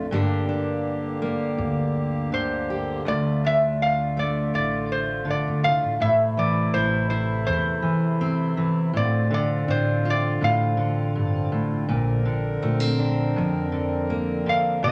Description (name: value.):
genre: acoustic folk duo or small band.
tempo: 82 BPM.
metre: 4/4.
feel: straight.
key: D minor.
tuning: A4 = 441 Hz.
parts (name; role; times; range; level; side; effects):
fingerpicked steel-string acoustic guitar; accompaniment; 0.0-14.9 s; D2 to G4; -28 LUFS; equal; none.
pedal harmonium; sustained chords; 0.0-14.9 s; C3 to B4; -33 LUFS; equal; none.
upright bass; bass; 0.0-14.9 s; G1 to F2; -30 LUFS; equal; none.
metal-body resonator slide guitar; melody; 2.3-14.9 s; C5 to F5; -26 LUFS; equal; none.
room: moderate large studio reverb, RT60 0.9 s.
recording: none.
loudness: -24 LUFS.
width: mono.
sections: 0.0-6.0 A section; 6.0-14.9 B section.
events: none.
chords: 0.1 Gm; 3.1 Dm; 6.0 Am; 8.9 Dm7/A; 11.9 Bbadd9.